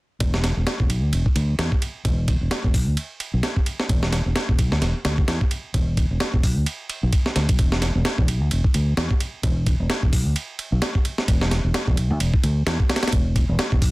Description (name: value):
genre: breakbeat, breaks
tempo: 130 BPM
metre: 4/4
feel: swing 57% on 16ths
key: unclear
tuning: A4 = 437 Hz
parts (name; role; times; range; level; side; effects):
- fingered electric bass; bass; 0.2-13.9 s; E1 to E2; -21 LUFS; equal; none
- breakbeat sampler-style drum kit; drums; 0.2-13.9 s; hi-hat, kick drum, ride cymbal, snare drum; -21 LUFS; equal; none
room: little or no reverb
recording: dense, heavily limited modern master, vinyl crackle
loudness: -19 LUFS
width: side -21 dB against mid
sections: 0.2-13.9 A section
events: none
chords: none